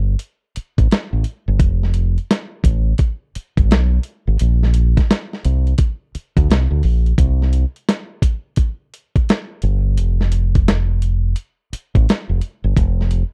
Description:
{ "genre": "R&B, neo-soul", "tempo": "86 BPM", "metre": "4/4", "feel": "swing 62% on 16ths", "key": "unclear", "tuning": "A4 = 437 Hz", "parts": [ { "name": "fingered electric bass", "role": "bass", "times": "0.0-13.2 s", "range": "F1 to D2", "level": "-18 LUFS", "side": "equal", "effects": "none" }, { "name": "dusty soul sampler-style drum kit", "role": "drums", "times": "0.2-13.3 s", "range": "hi-hat, kick drum, snare drum", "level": "-18 LUFS", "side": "equal", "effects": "none" } ], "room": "little or no reverb", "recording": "dry, close 1970s-style studio recording", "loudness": "-18 LUFS", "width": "mono", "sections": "0.0-7.2 A section; 7.2-13.3 B section", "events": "none", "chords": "none", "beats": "0.21 0.90 | 1.60 2.30 3.00 3.69 | 4.39 5.09 5.79 6.49 | 7.18 7.88 8.58 9.28 | 9.97 10.67 11.37 12.07 | 12.76" }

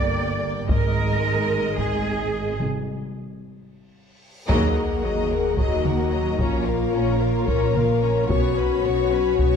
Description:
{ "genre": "cinematic, epic orchestral film score", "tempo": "221 BPM (eighths)", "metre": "7/8", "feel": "straight", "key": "Eb minor from 4.5 s", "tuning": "A4 = 441 Hz", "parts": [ { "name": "rich symphonic violin section", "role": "melody", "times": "0.0-9.6 s", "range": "Eb5 to C#6", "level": "-36 LUFS", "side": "left 2 dB", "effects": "none" }, { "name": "rich symphonic violin section", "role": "second line", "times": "0.0-9.6 s", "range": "Bb4 to Eb5", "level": "-32 LUFS", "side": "left 5 dB", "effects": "none" }, { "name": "rich symphonic viola section", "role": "accompaniment", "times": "0.0-9.6 s", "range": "Gb3 to Db4", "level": "-32 LUFS", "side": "equal", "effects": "none" }, { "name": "warm French horn section", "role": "sustained chords", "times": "0.0-9.6 s", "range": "D3 to Bb4", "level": "-25 LUFS", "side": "left 8 dB", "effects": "none" }, { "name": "rich symphonic double bass section", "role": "bass", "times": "0.0-9.6 s", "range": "G1 to Eb2", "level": "-27 LUFS", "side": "right 4 dB", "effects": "none" }, { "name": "warm symphonic cello section", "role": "bass", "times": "0.0-9.6 s", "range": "Eb2 to D5", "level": "-27 LUFS", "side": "right 4 dB", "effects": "none" }, { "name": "taiko ensemble", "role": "drums", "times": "0.7-9.6 s", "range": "none", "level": "-25 LUFS", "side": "equal", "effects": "none" }, { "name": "timpani", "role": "percussion", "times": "2.6-3.4 s", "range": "C3", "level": "-30 LUFS", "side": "left 1 dB", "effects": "none" }, { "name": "reverse cymbal and sub drop", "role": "sound effects", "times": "4.4-6.4 s", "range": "none", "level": "-32 LUFS", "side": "equal", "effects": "none" }, { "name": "rich symphonic string section", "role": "sustained chords", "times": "4.5-9.6 s", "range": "Bb3 to Eb5", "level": "-31 LUFS", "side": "equal", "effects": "none" } ], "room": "moderate scoring stage reverb, RT60 2.1 s", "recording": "dark, warm production", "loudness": "-20 LUFS", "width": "side -7 dB against mid", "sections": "0.0-4.5 A section; 4.5-9.6 A section", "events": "break 2.6-4.5; drum fill 3.7-4.5; reverse cymbal 4.4; band accent 4.5-5.0; impact 4.5-6.4", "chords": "0.0 Gm; 0.7 Absus2; 2.6 N.C.; 4.5 Ebm; 6.4 Bbm; 8.3 Bsus2", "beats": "0.16 0.43 | 0.70 0.97 1.24 1.51 1.78 2.06 2.33 | 2.60 2.87 3.14 3.41 3.68 3.95 4.22 | 4.50 4.77 5.04 5.31 5.58 5.85 6.12 | 6.39 6.66 6.93 7.21 7.48 7.75 8.02 | 8.29 8.56 8.83 9.10 9.38" }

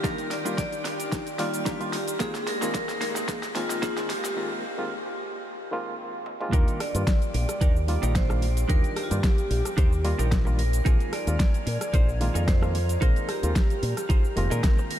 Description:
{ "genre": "nu-disco, nu disco", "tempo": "111 BPM", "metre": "4/4", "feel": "swing 53% on 16ths", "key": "Eb major", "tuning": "A4 = 441 Hz", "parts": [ { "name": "vibraphone with medium hard mallets", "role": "melody", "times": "0.0-15.0 s", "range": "F4 to D5", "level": "-32 LUFS", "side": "equal", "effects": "low-pass filter, diffuse ambient delay" }, { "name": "barky reed electric piano", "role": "accompaniment", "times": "0.0-15.0 s", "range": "Eb3 to D5", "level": "-33 LUFS", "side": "equal", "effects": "overdrive, fast tremolo, sidechain pumping, analog delay" }, { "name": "lush unison pad", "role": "sustained chords", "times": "0.0-15.0 s", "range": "Bb2 to F6", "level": "-41 LUFS", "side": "left 2 dB", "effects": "chorus, sidechain pumping" }, { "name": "direct-recorded clean electric guitar", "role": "riff", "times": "0.0-14.9 s", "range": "Bb3 to C5", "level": "-36 LUFS", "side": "right 3 dB", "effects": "wide subtle chorus" }, { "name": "electronic kick drum", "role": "drums", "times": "0.0-14.8 s", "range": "none", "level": "-23 LUFS", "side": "equal", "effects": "overdrive" }, { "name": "pop drum kit", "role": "drums", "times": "0.0-15.0 s", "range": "cabasa, hi-hat, rim click, snare drum, toms", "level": "-34 LUFS", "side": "equal", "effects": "overdrive, high-pass filter on snare, high-pass filter on hats, high-pass filter on perc, high-pass filter on toms, high-pass filter on room" }, { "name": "fingered electric bass with an envelope filter", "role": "bass", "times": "6.5-14.6 s", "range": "F1 to Bb2", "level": "-25 LUFS", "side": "equal", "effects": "none" } ], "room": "light reverb, digital ambience", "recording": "high-pass filter", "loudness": "-23 LUFS", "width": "side -11 dB against mid", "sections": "0.0-6.5 A section; 6.5-15.0 B section", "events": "build-up 0.0-6.5; drum fill 0.0-4.4, 6.3; filter sweep on vibraphone 0.0-6.5; filter sweep 0.0-6.5; break 4.4-6.5; drop 6.5-15.0", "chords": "0.0 Ebmaj7; 2.2 Bb7sus4; 6.5 Ebmaj7; 10.9 Bb7sus4", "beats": "| 0.04 0.58 1.12 1.67 | 2.21 2.75 3.29 3.83 | 4.37 4.91 5.45 5.99 | 6.53 7.07 7.61 8.15 | 8.69 9.23 9.77 10.31 | 10.86 11.39 11.94 12.48 | 13.02 13.56 14.10 14.64" }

